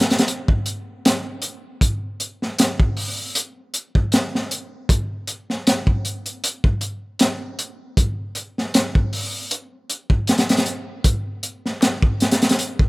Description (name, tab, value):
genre	trip hop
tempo	78 BPM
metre	4/4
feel	swing 55% on 16ths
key	none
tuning	none
part	crunchy breakbeat drum kit	drums	0.0-12.9 s	hi-hat, kick drum, snare drum	-18 LUFS	equal	none
part	darbuka	percussion	11.8-12.0 s	none	-38 LUFS	left 1 dB	none
room	light reverb, studio reverb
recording	rough home demo mix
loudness	-19 LUFS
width	side -27 dB against mid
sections	0.0-12.9 A section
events	none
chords	none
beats	0.28 1.05 | 1.82 2.58 3.35 4.12 | 4.89 5.66 6.43 7.20 | 7.97 8.74 9.51 10.28 | 11.05 11.82 12.59